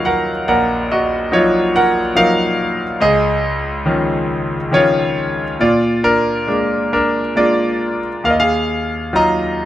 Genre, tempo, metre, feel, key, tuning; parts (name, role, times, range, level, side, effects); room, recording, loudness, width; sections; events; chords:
classical, lyrical solo piano; 69 BPM; 3/4; uneven beats, rubato; Eb minor; A4 = 440 Hz
bright concert grand piano; solo; 0.0-9.7 s; Bb1 to Bb5; -14 LUFS; equal
light reverb; close, detailed microphones; -14 LUFS; side -13 dB against mid
0.0-9.7 A section
0.0 Ebmadd9; 3.0 Dbadd9; 5.6 Bb7; 8.2 Ebmadd9